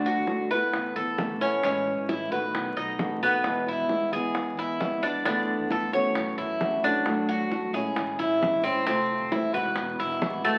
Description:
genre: latin, Cuban son and guajira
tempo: 133 BPM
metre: 4/4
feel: straight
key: unclear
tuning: A4 = 440 Hz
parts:
  - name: fingerpicked old ladder-braced acoustic guitar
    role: accompaniment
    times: 0.0-10.6 s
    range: B2 to F#4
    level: -33 LUFS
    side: equal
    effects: none
  - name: Cuban tres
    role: arpeggios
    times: 0.0-10.6 s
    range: A3 to C#5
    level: -29 LUFS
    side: equal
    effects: none
  - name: upright bass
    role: bass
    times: 0.0-10.6 s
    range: E1 to F#2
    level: -42 LUFS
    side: equal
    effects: none
  - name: bongos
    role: percussion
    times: 0.0-10.4 s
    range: none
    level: -36 LUFS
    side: equal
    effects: none
room: wet large studio reverb, RT60 0.9 s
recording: very old 78 rpm record, vinyl crackle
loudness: -27 LUFS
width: mono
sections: 0.0-10.6 A section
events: none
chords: 0.0 D; 0.7 E7sus4; 1.6 Amaj7; 2.5 B7; 3.5 E; 5.3 E7sus4; 6.2 F#m7; 7.1 Dmaj7/F#; 8.0 Amaj7; 8.9 Fmaj7; 9.8 Eadd9

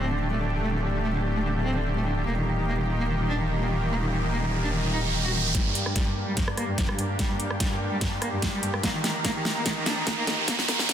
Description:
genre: heavy wobble dubstep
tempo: 146 BPM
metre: 4/4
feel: half-time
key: G minor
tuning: A4 = 441 Hz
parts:
  - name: rich cello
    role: melody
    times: 0.0-10.9 s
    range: G2 to F#4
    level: -29 LUFS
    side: equal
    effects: low-pass filter, digital delay
  - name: supersaw pad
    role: sustained chords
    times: 0.0-10.9 s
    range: Eb3 to Bb5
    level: -31 LUFS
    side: equal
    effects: sidechain pumping, low-pass filter
  - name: wobble bass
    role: bass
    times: 0.0-5.5 s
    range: D1 to Eb1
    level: -28 LUFS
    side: equal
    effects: chorus, overdrive
  - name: riser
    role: sound effects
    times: 3.5-10.9 s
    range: none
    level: -32 LUFS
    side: right 3 dB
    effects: none
  - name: dubstep drum kit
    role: drums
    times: 5.5-10.9 s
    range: hi-hat, rim click, snare drum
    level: -28 LUFS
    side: equal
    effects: small room ambience
  - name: electronic kick drum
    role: drums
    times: 5.5-10.9 s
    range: none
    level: -29 LUFS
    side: equal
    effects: small room ambience
room: moderate lush hall reverb, RT60 2.0 s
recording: dense, heavily limited modern master, high-pass filter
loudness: -24 LUFS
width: side -9 dB against mid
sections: 0.0-5.5 A section; 5.5-10.9 B section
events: riser 3.5-5.5, 5.5-10.9; build-up 5.5-10.9; drum fill 5.5-10.9; filter sweep on supersaw synth 5.5-10.9; filter sweep on cello 5.5-10.9; filter sweep 5.5-10.9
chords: 0.0 Dsus4; 2.3 Eb; 5.5 Gm; 8.8 Eb

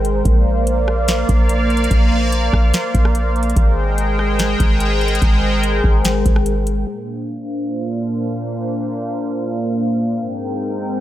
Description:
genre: hip hop, atmospheric cloud-rap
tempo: 145 BPM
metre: 4/4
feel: half-time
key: Bb mixolydian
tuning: A4 = 435 Hz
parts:
  - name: sweeping resonant pad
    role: sustained chords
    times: 0.0-11.0 s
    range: Ab2 to G5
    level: -19 LUFS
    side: equal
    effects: chorus, low-pass filter
  - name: warm 808-style bass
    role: bass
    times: 0.0-6.9 s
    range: Ab1 to Bb1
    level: -18 LUFS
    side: equal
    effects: none
  - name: booming analog drum machine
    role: drums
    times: 0.0-6.8 s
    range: hi-hat, kick drum, rim click, snare drum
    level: -16 LUFS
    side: equal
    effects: none
room: light reverb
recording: none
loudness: -15 LUFS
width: side -13 dB against mid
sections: 0.0-6.9 A section; 6.9-11.0 B section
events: filter sweep on analog synth pad 6.9-11.0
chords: 0.3 Bbadd9; 3.6 Abmaj7; 6.9 Bbadd9; 10.2 Abmaj7

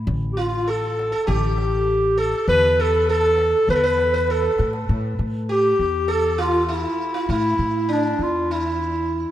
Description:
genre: Turkish makam ensemble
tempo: 100 BPM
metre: 4/4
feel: straight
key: unclear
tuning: A4 = 441 Hz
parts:
  - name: upright bass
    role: bass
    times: 0.0-9.2 s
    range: A1 to A2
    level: -24 LUFS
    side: left 1 dB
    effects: none
  - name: darbuka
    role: percussion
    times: 0.1-4.9 s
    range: none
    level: -33 LUFS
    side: equal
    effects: none
  - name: mellow clarinet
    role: melody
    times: 0.3-9.3 s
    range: D4 to B4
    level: -20 LUFS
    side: equal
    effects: none
  - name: sitar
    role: second line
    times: 0.4-9.3 s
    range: D4 to B4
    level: -26 LUFS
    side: right 3 dB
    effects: none
room: moderate lush hall reverb, RT60 2.8 s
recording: rough home demo mix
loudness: -18 LUFS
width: side -12 dB against mid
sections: 0.0-4.9 A section; 4.9-9.3 B section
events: drum fill 4.3-4.9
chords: none

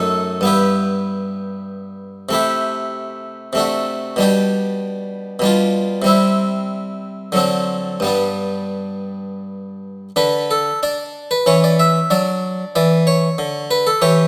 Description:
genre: classical, baroque-style suite movement for harpsichord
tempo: 85-98 BPM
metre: 3/4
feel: rubato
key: G major, D major from 10.2 s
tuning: A4 = 440 Hz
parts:
  - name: harpsichord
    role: solo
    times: 0.0-14.3 s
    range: F#2 to E5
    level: -18 LUFS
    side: equal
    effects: none
room: moderate recital hall reverb, RT60 1.3 s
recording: close, detailed microphones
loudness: -18 LUFS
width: mono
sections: 0.0-10.2 A section; 10.2-14.3 A section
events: none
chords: 0.0 D#dim/F#; 0.5 Em/G; 2.4 Am7/C; 3.6 D7/C; 4.2 G/B; 5.5 G7/B; 6.1 C; 7.4 D7; 8.1 G; 10.2 N.C.; 11.5 C#m/E; 12.1 D

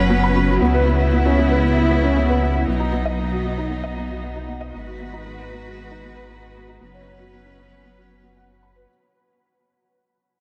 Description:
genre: piano and strings electronica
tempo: 116 BPM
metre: 4/4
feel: straight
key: unclear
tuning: A4 = 440 Hz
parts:
  - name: clear studio string section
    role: sustained chords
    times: 0.0-8.9 s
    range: C#3 to B4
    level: -26 LUFS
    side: equal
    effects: none
  - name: felt-muted upright piano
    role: riff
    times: 0.0-8.9 s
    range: B3 to B5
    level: -24 LUFS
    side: equal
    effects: analog chorus, diffuse ambient delay
  - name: dark detuned saw bass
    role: bass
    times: 0.0-8.9 s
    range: F#1 to C#2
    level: -24 LUFS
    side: equal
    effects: none
room: wet cathedral reverb, RT60 6.5 s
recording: dreamy mix soaked in reverb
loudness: -19 LUFS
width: mono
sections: 0.0-8.9 A section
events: fade-out 0.0-8.9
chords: 0.0 F#sus4; 0.6 C#m7; 2.7 B; 4.7 G#m7; 6.8 F#sus4

